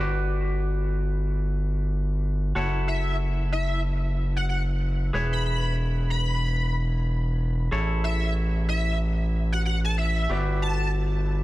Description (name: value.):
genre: glitch hop.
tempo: 93 BPM.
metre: 4/4.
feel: swing 60% on 16ths.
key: unclear.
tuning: A4 = 440 Hz.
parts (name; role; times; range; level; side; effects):
clean electric guitar; stabs; 0.0-11.4 s; E4 to D5; -33 LUFS; left 1 dB; dub echo.
gritty driven synth bass; bass; 0.0-11.4 s; E1 to A1; -24 LUFS; equal; distortion, tube saturation.
sync lead; melody; 2.9-10.9 s; E5 to B5; -31 LUFS; left 1 dB; ensemble chorus, dub echo.
room: little or no reverb.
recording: dense, heavily limited modern master.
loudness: -23 LUFS.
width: side -17 dB against mid.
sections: 0.0-11.4 A section.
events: none.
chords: 0.0 Gmaj7; 2.6 F#m7; 5.1 E6; 7.7 Amaj7; 10.3 Gmaj7.